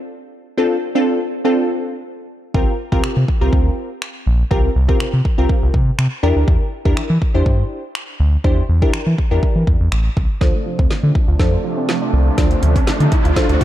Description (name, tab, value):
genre	dance-pop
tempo	122 BPM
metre	4/4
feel	straight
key	D minor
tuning	A4 = 440 Hz
part	wavetable chord stab	accompaniment	0.6-13.6 s	C4 to C5	-20 LUFS	equal	sidechain pumping, low-pass filter
part	round analog bass	bass	2.5-13.6 s	A1 to E3	-16 LUFS	equal	sidechain pumping
part	deep house drum kit	drums	2.5-13.6 s	finger snaps, hi-hat, kick drum, snare drum	-18 LUFS	equal	overdrive
part	supersaw pad	sustained chords	10.4-13.6 s	C3 to D4	-24 LUFS	right 2 dB	sidechain pumping, low-pass filter
part	mallet-like synth pluck	arpeggios	10.4-13.6 s	F3 to F4	-26 LUFS	right 5 dB	chorus, sidechain pumping, low-pass filter, ping-pong delay
part	riser	sound effects	11.7-13.6 s	none	-25 LUFS	right 1 dB	none
room	little or no reverb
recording	dark, warm production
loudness	-14 LUFS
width	side -13 dB against mid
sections	0.0-10.4 A section; 10.4-13.6 B section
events	build-up 10.4-13.6; drum fill 10.4-13.6; filter sweep 10.4-13.6; riser 11.7-13.6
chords	0.0 Dm7; 2.5 C7sus4; 6.2 Em7b5; 10.4 Dm7